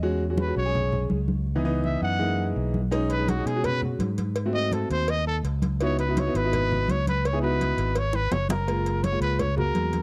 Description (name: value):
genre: Afro-Cuban jazz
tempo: 167 BPM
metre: 4/4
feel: straight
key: C# minor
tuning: A4 = 440 Hz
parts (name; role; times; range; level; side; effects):
- clear upright piano; accompaniment; 0.0-9.9 s; E3 to G#4; -31 LUFS; equal; none
- fingered electric bass; bass; 0.0-10.0 s; F#1 to B2; -29 LUFS; equal; none
- congas; percussion; 0.0-10.0 s; none; -33 LUFS; equal; none
- breathy trumpet; melody; 0.4-10.0 s; F#4 to F#5; -31 LUFS; equal; none
- cowbell and bongos; percussion; 2.9-10.0 s; none; -36 LUFS; equal; none
room: studio reverb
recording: dry, close 1970s-style studio recording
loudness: -25 LUFS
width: mono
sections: 0.0-8.7 A section; 8.7-10.0 A section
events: trumpet solo 0.0-10.0; drum fill 8.1-8.7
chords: 0.0 E69; 1.5 C#m7; 2.2 F#13; 2.9 B69; 4.4 G#7b9; 5.8 C#m11; 8.7 F#maj7